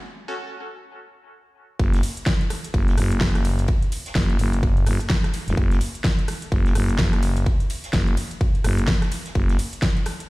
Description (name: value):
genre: bass house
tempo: 127 BPM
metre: 4/4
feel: swing 59% on 16ths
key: unclear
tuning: A4 = 440 Hz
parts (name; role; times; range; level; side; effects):
- growling FM bass; bass; 1.8-9.6 s; E1 to F#1; -21 LUFS; equal; tube saturation, sidechain pumping
- electronic kick drum; drums; 1.8-9.9 s; none; -21 LUFS; equal; overdrive
- open jazz drum kit; drums; 1.8-10.2 s; ride cymbal, snare drum; -40 LUFS; left 2 dB; high-pass filter on cymbals, high-pass filter on snare, high-pass filter on room
- big-room dance drum kit; drums; 1.9-10.3 s; hi-hat, ride cymbal, rim click, snare drum; -27 LUFS; equal; overdrive
room: studio reverb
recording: played on a big sound system in a bare room, stone room reverb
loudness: -19 LUFS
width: side -21 dB against mid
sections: 0.0-1.8 A section; 1.8-10.3 B section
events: break 0.0-1.8; build-up 0.0-1.8; drop 1.8-10.3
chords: none